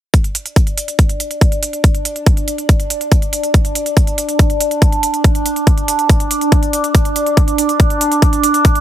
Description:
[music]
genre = psychedelic trance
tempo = 141 BPM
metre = 4/4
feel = straight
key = unclear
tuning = A4 = 441 Hz
[part]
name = overtone-sweeping drone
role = sustained chords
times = 0.8-8.8 s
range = D4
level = -18 LUFS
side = right 1 dB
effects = chorus, built-in reverb, phaser, sidechain pumping
[part]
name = electronic hi-hat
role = drums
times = 0.1-8.8 s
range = none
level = -21 LUFS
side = right 3 dB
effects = none
[part]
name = electronic kick drum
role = drums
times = 0.1-8.7 s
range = none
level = -12 LUFS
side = equal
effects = none
[sound]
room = digital ambience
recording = none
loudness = -12 LUFS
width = side -11 dB against mid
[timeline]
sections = 0.1-8.8 A section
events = none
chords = none

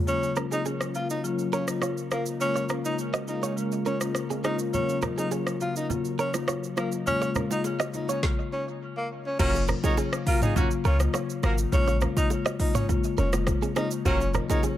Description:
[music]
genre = afrobeats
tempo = 103 BPM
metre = 4/4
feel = straight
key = unclear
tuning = A4 = 439 Hz
[part]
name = warm analog pad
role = sustained chords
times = 0.0-8.2 s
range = Gb3 to Bb4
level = -36 LUFS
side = right 2 dB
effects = chorus
[part]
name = breathy tenor saxophone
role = melody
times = 0.1-14.6 s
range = Bb3 to F4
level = -31 LUFS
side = equal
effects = dub echo
[part]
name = marimba with medium mallets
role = accompaniment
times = 0.1-14.8 s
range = Db3 to F4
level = -30 LUFS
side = left 5 dB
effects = dub echo
[part]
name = afro-pop drum kit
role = drums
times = 0.1-14.8 s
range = crash cymbal, hi-hat, kick drum, rim click, shaker, snare drum, toms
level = -29 LUFS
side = equal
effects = none
[part]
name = direct-recorded clean electric guitar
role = riff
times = 0.4-14.8 s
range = C4 to Eb5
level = -34 LUFS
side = right 6 dB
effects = dub echo
[part]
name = congas and bongos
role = percussion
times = 4.7-14.8 s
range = none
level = -37 LUFS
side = right 5 dB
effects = none
[part]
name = warm horn section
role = second line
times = 9.4-14.6 s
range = Bb3 to Db5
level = -33 LUFS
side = right 4 dB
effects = none
[part]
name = clean 808-style bass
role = bass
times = 9.4-14.4 s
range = F1 to Db2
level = -25 LUFS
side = equal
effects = none
[sound]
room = light reverb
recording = echo-heavy mix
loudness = -24 LUFS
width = side -12 dB against mid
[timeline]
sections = 0.1-9.4 A section; 9.4-14.8 B section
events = stop 8.2-9.4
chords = 0.1 Gbmaj7; 2.4 Bbm7; 4.7 Gbmaj7; 7.1 Bbm7; 9.4 Gbmaj7; 11.7 Bbm7; 14.1 Gbmaj7

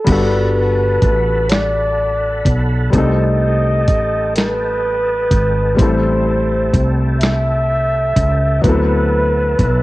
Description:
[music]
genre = slow six-eight R&B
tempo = 42 BPM (dotted quarters)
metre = 6/8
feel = straight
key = G major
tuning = A4 = 438 Hz
[part]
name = breathy flugelhorn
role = melody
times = 0.0-9.8 s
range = B4 to E5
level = -18 LUFS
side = equal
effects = cassette tape
[part]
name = warm concert grand piano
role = accompaniment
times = 0.0-9.8 s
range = F#3 to A4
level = -21 LUFS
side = left 2 dB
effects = cassette tape
[part]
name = tonewheel organ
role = sustained chords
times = 0.1-9.8 s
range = A4 to B5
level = -27 LUFS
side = right 1 dB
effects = overdrive, chorus vibrato, slow rotary speaker, cassette tape
[part]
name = woody fretless electric bass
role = bass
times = 0.1-9.8 s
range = G1 to D2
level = -17 LUFS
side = equal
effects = none
[part]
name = dusty soul sampler-style drum kit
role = drums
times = 0.1-9.8 s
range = crash cymbal, hi-hat, kick drum, snare drum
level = -16 LUFS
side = equal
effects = none
[sound]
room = digital ambience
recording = home recording on cassette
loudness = -13 LUFS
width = side -18 dB against mid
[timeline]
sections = 0.1-9.8 A section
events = none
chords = 0.1 Gmaj9; 2.9 Cm6; 5.8 Am7; 8.6 D13

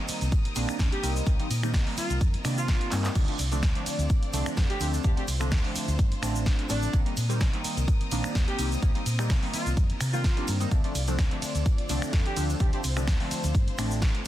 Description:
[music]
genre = filtered disco house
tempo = 127 BPM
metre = 4/4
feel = swing 54% on 16ths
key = C dorian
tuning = A4 = 440 Hz
[part]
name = funky polysynth comp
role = accompaniment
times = 0.0-14.3 s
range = D3 to F4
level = -33 LUFS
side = equal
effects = chorus, phaser, cassette tape, sidechain pumping
[part]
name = rich symphonic string section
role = sustained chords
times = 0.0-14.3 s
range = C4 to Eb6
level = -39 LUFS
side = left 1 dB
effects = sidechain pumping
[part]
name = hollow-body short-scale fingered electric bass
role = bass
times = 0.1-14.1 s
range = A1 to C3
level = -29 LUFS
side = equal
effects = sidechain pumping
[part]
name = punchy analog drum machine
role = drums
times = 0.1-14.2 s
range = cabasa, crash cymbal, finger snaps, handclaps, hi-hat, ride cymbal, snare drum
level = -34 LUFS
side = right 1 dB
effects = sidechain pumping on hats, sidechain pumping on perc, sidechain pumping on cymbals, soft clipping on snare
[part]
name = tube shaker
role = percussion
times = 0.1-14.3 s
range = none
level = -44 LUFS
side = right 1 dB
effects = none
[part]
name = electronic kick drum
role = drums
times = 0.3-14.1 s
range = none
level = -25 LUFS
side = equal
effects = none
[part]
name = warm horn section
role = melody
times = 0.9-12.8 s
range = D4 to G4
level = -37 LUFS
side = right 1 dB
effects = sidechain pumping, dub echo
[sound]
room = digital ambience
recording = dense, heavily limited modern master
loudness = -24 LUFS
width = side -13 dB against mid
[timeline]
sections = 0.0-14.3 A section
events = drum fill 2.9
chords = 0.0 Cm7; 3.2 Dm7; 6.9 Cm7; 10.7 Dm7

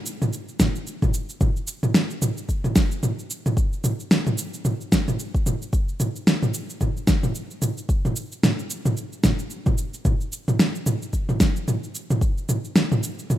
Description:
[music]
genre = downtempo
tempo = 111 BPM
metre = 4/4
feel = swing 58% on 16ths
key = none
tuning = none
[part]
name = deep house drum kit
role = drums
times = 0.1-13.4 s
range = cabasa, snare drum, toms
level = -22 LUFS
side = equal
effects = none
[part]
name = electronic kick drum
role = drums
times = 0.6-12.3 s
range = none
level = -23 LUFS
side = equal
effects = none
[sound]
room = light reverb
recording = rough home demo mix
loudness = -21 LUFS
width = side -13 dB against mid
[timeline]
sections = 0.0-13.4 A section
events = none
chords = none

